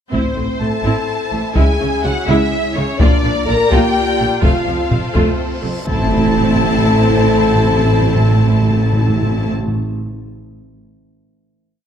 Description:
cinematic, epic orchestral film score; 84 BPM (dotted quarters); 6/8; straight; A phrygian; A4 = 438 Hz
clear symphonic violin section; melody; 0.1-9.5 s; C5 to Bb5; -24 LUFS; left 3 dB
rich studio violin section; second line; 0.1-9.5 s; C5 to Bb5; -25 LUFS; left 2 dB
clear symphonic viola section; accompaniment; 0.1-9.5 s; C3 to F4; -22 LUFS; right 1 dB
clear symphonic string section; sustained chords; 0.1-9.5 s; Bb3 to E5; -25 LUFS; equal
mellow French horn section; sustained chords; 0.1-9.5 s; C4 to Bb4; -21 LUFS; left 6 dB
clear symphonic double bass section; bass; 0.1-9.5 s; F1 to C#2; -21 LUFS; right 3 dB
rich symphonic cello section; bass; 0.1-9.5 s; F2 to C#3; -20 LUFS; right 3 dB
taiko ensemble; drums; 0.1-5.6 s; -18 LUFS; left 1 dB
timpani; percussion; 0.1-0.8, 5.9-9.8 s; A2; -19 LUFS; equal
reverse cymbal and impact; sound effects; 5.6-7.3 s; -26 LUFS; equal
moderate recital hall reverb, RT60 1.6 s; dark, warm production; -13 LUFS; side -8 dB against mid
0.1-5.9 theme; 5.9-8.7 final chord
reverse cymbal 5.6; impact 5.9-7.3
0.1 Am; 1.6 C#m; 3.0 Bb; 4.4 F; 5.9 Am

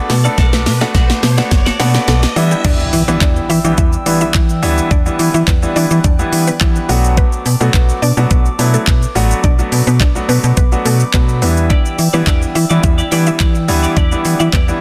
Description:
dance-pop; 106 BPM; 4/4; straight; E minor; A4 = 440 Hz
clear concert grand piano; accompaniment; 0.0-14.8 s; E3 to A4; -21 LUFS; equal; sidechain pumping, low-pass filter
glass harmonica; sustained chords; 0.0-14.8 s; B4 to F#6; -29 LUFS; equal; sidechain pumping, low-pass filter
mallet-like synth pluck; arpeggios; 0.0-2.6 s; B3 to B4; -32 LUFS; equal
riser and impact; sound effects; 0.0-4.9 s; -28 LUFS; equal
twelve-string electric guitar; riff; 0.1-2.6, 11.7-14.7 s; E4 to D5; -27 LUFS; equal; subtle chorus, low-pass filter
slap-like FM bass; bass; 0.1-14.7 s; F#1 to E3; -17 LUFS; equal; sidechain pumping
pop drum kit; drums; 0.1-14.8 s; crash cymbal, handclaps, hi-hat, kick drum, shaker, snare drum; -17 LUFS; equal
mallet-like synth pluck; melody; 2.6-14.7 s; A3 to E5; -25 LUFS; equal; chorus, dub echo
digital ambience; dense, heavily limited modern master; -13 LUFS; mono
0.0-2.6 A section; 2.6-14.8 B section
build-up 0.0-2.6; drum fill 0.0-2.6; riser 0.0-2.6; filter sweep 0.0-2.6; drop 2.6-14.8; impact 2.6-4.9
0.0 Bm7; 2.4 Em7; 6.9 Bm7; 11.4 Em7

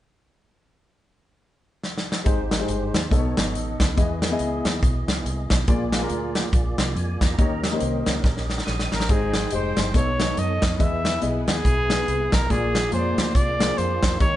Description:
uptempo gospel; 141 BPM; 4/4; swing 59% on 8ths; A4 = 441 Hz
natural country drum kit; drums; 1.8-14.3 s; hi-hat, kick drum, snare drum; -22 LUFS; equal
warm grand piano; accompaniment; 2.2-14.4 s; Ab2 to F5; -27 LUFS; left 3 dB
tonewheel organ; sustained chords; 2.2-14.4 s; Ab3 to Eb6; -32 LUFS; right 2 dB; slow rotary speaker, chorus vibrato
fingered electric bass; bass; 2.3-14.4 s; F1 to F#2; -28 LUFS; equal
breathy trumpet; melody; 8.9-14.4 s; Ab4 to E5; -25 LUFS; equal
warm studio string section; sustained chords; 9.1-14.4 s; Ab3 to G5; -38 LUFS; left 1 dB
moderate stone room reverb, RT60 0.9 s; band playing live in one room, nothing above 10.3 kHz; -20 LUFS; side -13 dB against mid
0.6-2.3 A section; 2.3-9.1 B section; 9.1-14.4 C section
drum fill 1.8-2.3, 8.2-9.1
0.6 N.C.; 2.3 Abmaj7; 3.1 B9; 4.0 Emaj7; 5.7 Bb7; 7.4 Eb7; 9.1 Abmaj7; 9.9 B9; 10.8 Emaj7; 12.5 Bb7

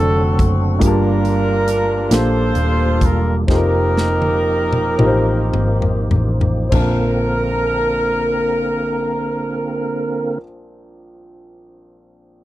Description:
slow gospel; 32-47 BPM (dotted quarters); 6/8; straight; Bb major; A4 = 439 Hz
warm horn section; melody; 0.0-10.4 s; C4 to C5; -20 LUFS; right 1 dB
warm upright piano; accompaniment; 0.0-12.4 s; Bb1 to A5; -22 LUFS; equal
percussive tonewheel organ; sustained chords; 0.0-10.4 s; D3 to Bb4; -24 LUFS; right 2 dB; slow rotary speaker, overdrive, chorus vibrato
hollow-body short-scale picked electric bass; bass; 0.0-10.4 s; Eb1 to Bb1; -19 LUFS; equal
modern studio drum kit; drums; 0.4-7.0 s; crash cymbal, hi-hat, kick drum, snare drum, toms; -19 LUFS; left 1 dB
little or no reverb; dry, close 1970s-style studio recording; -15 LUFS; side -15 dB against mid
0.0-6.7 A section; 6.7-10.5 B section
slowing down 0.8-6.7; drum fill 3.5-6.7
0.0 D7; 0.8 Gm9; 3.5 F9sus4; 6.7 Bbmaj9

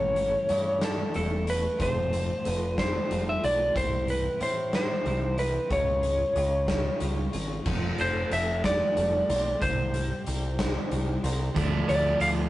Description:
quiet-loud alternative rock; 61 BPM (dotted quarters); 6/8; straight; A4 = 439 Hz
lightly driven lead guitar; melody; 0.0-12.3 s; A4 to F5; -27 LUFS; equal
twelve-string electric guitar; arpeggios; 0.0-12.5 s; A2 to F4; -36 LUFS; left 1 dB; tremolo
growling picked electric bass; bass; 0.0-12.5 s; E1 to A2; -30 LUFS; equal; overdrive
oversized low-tuned drum kit; drums; 0.2-12.4 s; crash cymbal, hi-hat, kick drum, snare drum; -31 LUFS; equal
crunchy overdriven guitar; riff; 11.5-12.5 s; D3 to D4; -28 LUFS; right 2 dB
light reverb; rough rehearsal-room recording, nothing above 10.7 kHz; -24 LUFS; side -15 dB against mid
0.0-7.7 A section; 7.7-12.5 B section
0.0 A; 1.8 F; 3.8 C; 5.7 C#; 7.7 F; 9.6 C5; 11.6 Dm

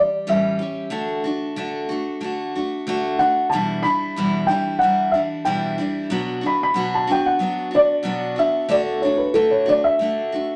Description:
acoustic folk duo or small band; 92 BPM; 4/4; straight; A4 = 440 Hz
felt-muted upright piano; melody; 0.0-10.6 s; A4 to B5; -21 LUFS; equal
picked steel-string acoustic guitar; accompaniment; 0.0-10.6 s; E2 to G4; -26 LUFS; equal
wet club reverb, RT60 0.5 s; -21 LUFS; mono
0.0-10.6 A section
felt piano solo 0.0-10.6
0.0 A7; 0.9 D; 3.5 Em7; 6.1 Bm; 8.7 D

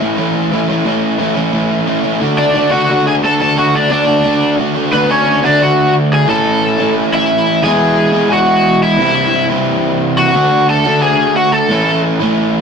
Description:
punk; 177 BPM; 4/4; straight; A major; A4 = 439 Hz
crunchy overdriven guitar; riff; 0.0-12.6 s; A2 to F#4; -13 LUFS; equal
cranked stack guitar; melody; 2.4-12.0 s; B3 to A5; -12 LUFS; equal; overdrive
wet stone room reverb, RT60 1.1 s; rough rehearsal-room recording, tube saturation; -10 LUFS; side -6 dB against mid
0.0-4.9 A section; 4.9-12.6 B section
0.0 A; 2.2 D; 6.3 A; 7.6 E; 9.0 C; 10.3 D; 11.7 A

